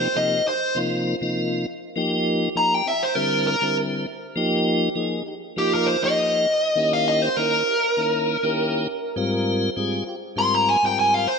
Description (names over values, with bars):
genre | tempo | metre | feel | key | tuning
jazz | 100 BPM | 4/4 | swing 54% on 16ths | unclear | A4 = 439 Hz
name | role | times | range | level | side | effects
dark smooth lead guitar | melody | 0.0-11.4 s | G4 to C6 | -20 LUFS | equal | overdrive
tonewheel organ | accompaniment | 0.0-11.3 s | Ab2 to Bb4 | -23 LUFS | left 1 dB | slow rotary speaker
room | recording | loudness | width
wet plate reverb, RT60 2.7 s | bright 1980s-style digital production | -20 LUFS | side -5 dB against mid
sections
0.0-11.4 A section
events
lead electric guitar solo 0.0-11.4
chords
0.0 Cm7; 1.7 F9sus4; 2.9 C; 4.1 Fm9; 6.5 Eb7b9; 8.9 Abmaj9